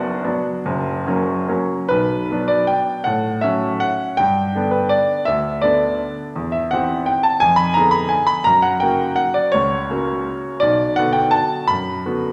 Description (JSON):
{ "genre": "classical, piano waltz", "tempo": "134-184 BPM", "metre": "3/4", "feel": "rubato", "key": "B minor", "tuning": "A4 = 440 Hz", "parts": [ { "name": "clear grand piano", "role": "solo", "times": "0.0-12.3 s", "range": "F#1 to Cb6", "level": "-19 LUFS", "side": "equal", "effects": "none" } ], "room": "wet recital hall reverb, RT60 1.5 s", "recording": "none", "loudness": "-19 LUFS", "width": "mono", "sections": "0.0-1.9 A section; 1.9-12.3 B section", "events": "none", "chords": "0.0 Bm/F#; 0.7 F#; 1.9 Bm; 3.1 F#m/A; 4.2 G; 6.4 C/E; 7.4 Fdim7; 8.5 F#; 10.6 Bm", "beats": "0.24 | 0.66 1.08 1.49 | 1.91 2.30 2.69 | 3.06 3.42 3.80 | 4.17 4.53 4.91 | 5.27 5.62 5.99 | 6.35 6.72 7.08 | 7.42 7.76 8.11 | 8.46 8.81 9.18 | 9.53 9.89 10.26 | 10.61 10.96 11.33 | 11.70 12.05" }